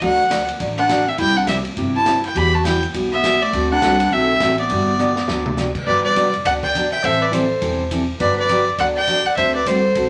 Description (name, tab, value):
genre	country, western swing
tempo	205 BPM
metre	4/4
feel	swing 61% on 8ths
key	G major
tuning	A4 = 440 Hz
part	rich fiddle	melody	0.0-10.1 s	C5 to B5	-20 LUFS	equal	none
part	picked steel-string acoustic guitar	accompaniment	0.0-10.1 s	C3 to A4	-25 LUFS	equal	none
part	upright bass	bass	0.0-10.1 s	E1 to E2	-28 LUFS	equal	none
part	swinging big-band drum kit	drums	0.0-10.0 s	crash cymbal, hi-hat, kick drum, ride cymbal, snare drum, toms	-31 LUFS	equal	none
part	growling clarinet	second line	0.8-10.1 s	A3 to E5	-26 LUFS	equal	none
room	wet studio reverb, RT60 0.5 s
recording	none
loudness	-18 LUFS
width	mono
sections	0.0-5.9 A section; 5.9-10.1 B section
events	drum fill 5.0-5.6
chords	0.0 D; 1.2 C; 2.4 Emadd9; 3.5 D7; 4.7 Gmaj7; 7.0 Am7; 8.2 Gmaj7; 9.4 D7